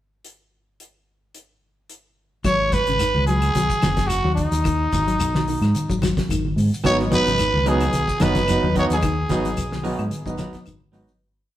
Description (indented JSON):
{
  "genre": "afrobeat",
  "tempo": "109 BPM",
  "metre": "4/4",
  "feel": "swing 53% on 16ths",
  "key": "G# minor",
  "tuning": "A4 = 440 Hz",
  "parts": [
    { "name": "damped 70s drum kit", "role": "drums", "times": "0.2-11.1 s", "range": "hi-hat, kick drum, snare drum", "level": "-28 LUFS", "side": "equal", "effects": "none" },
    { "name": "clean electric guitar", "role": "arpeggios", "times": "2.4-10.9 s", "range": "C#3 to F#3", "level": "-29 LUFS", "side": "left 4 dB", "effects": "slapback echo" },
    { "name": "fingered electric bass", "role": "bass", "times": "2.4-11.1 s", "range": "F#1 to G#2", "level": "-23 LUFS", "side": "equal", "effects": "none" },
    { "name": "claves", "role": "percussion", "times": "2.4-10.8 s", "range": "none", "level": "-40 LUFS", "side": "left 8 dB", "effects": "none" },
    { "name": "congas", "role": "percussion", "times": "2.4-11.1 s", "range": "none", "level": "-30 LUFS", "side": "equal", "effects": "none" },
    { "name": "shekere", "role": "percussion", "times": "2.4-11.2 s", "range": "none", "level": "-32 LUFS", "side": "left 2 dB", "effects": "none" },
    { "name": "growling trumpet", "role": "melody", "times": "2.5-10.5 s", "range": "D#4 to C#5", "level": "-22 LUFS", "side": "right 1 dB", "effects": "none" },
    { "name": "electric guitar at the edge of break-up", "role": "stabs", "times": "6.8-11.1 s", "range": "F#3 to D#4", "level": "-23 LUFS", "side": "right 1 dB", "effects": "slapback echo" }
  ],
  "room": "wet stone room reverb, RT60 1.2 s",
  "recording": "rough rehearsal-room recording",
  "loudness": "-18 LUFS",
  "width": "side -13 dB against mid",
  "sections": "0.2-2.4 pickup bar; 2.4-11.2 groove",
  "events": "fade-out 9.0-11.2",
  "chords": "0.2 N.C.; 2.4 G#m7"
}